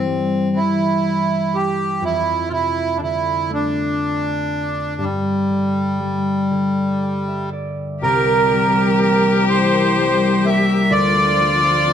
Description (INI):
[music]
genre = celtic folk, Celtic slow air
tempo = 41 BPM (dotted quarters)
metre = 6/8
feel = uneven beats, rubato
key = unclear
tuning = A4 = 439 Hz
[part]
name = accordion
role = melody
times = 0.0-11.9 s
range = G3 to E5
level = -19 LUFS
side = right 2 dB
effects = none
[part]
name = concert harp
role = accompaniment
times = 0.0-11.9 s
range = C2 to G5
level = -20 LUFS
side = left 1 dB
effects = none
[part]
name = warm cello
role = second line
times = 8.0-11.9 s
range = F4 to G4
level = -22 LUFS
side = left 5 dB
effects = none
[part]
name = dark symphonic string section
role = sustained chords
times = 8.0-11.9 s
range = E3 to C5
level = -26 LUFS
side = left 2 dB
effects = none
[sound]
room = moderate scoring stage reverb, RT60 1.9 s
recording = close, detailed microphones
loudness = -16 LUFS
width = side -9 dB against mid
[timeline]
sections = 0.0-8.0 A section; 8.0-11.9 B section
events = harp fill 6.5-8.0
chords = 0.0 C/G; 2.0 F6; 5.0 G5; 8.0 C7; 10.9 Dm7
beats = 0.54 | 2.02 3.49 | 4.98 6.50 | 8.01 9.47 | 10.90